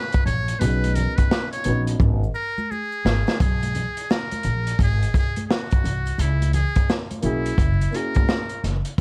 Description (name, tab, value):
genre	hip hop, jazz-hop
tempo	86 BPM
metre	4/4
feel	swing 64% on 16ths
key	B major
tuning	A4 = 439 Hz
part	trumpet with metal mute	melody	0.0-8.6 s	E4 to C#5	-30 LUFS	equal	none
part	crunchy breakbeat drum kit	drums	0.1-9.0 s	hi-hat, kick drum, snare drum	-24 LUFS	equal	none
part	maracas and congas	percussion	0.1-9.0 s	none	-36 LUFS	equal	none
part	upright bass	bass	0.3-9.0 s	F#1 to C#2	-24 LUFS	equal	none
part	dark concert grand piano	accompaniment	0.6-2.2, 7.2-8.4 s	A#3 to B4	-30 LUFS	equal	none
room	little or no reverb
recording	dark, warm production, vinyl crackle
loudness	-22 LUFS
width	mono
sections	0.0-3.4 A section; 3.4-9.0 B section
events	muted trumpet solo 0.0-3.4; drum fill 2.0-3.4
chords	0.0 B69; 3.4 G#madd9; 4.8 G#7; 6.2 C#m7; 7.6 F#7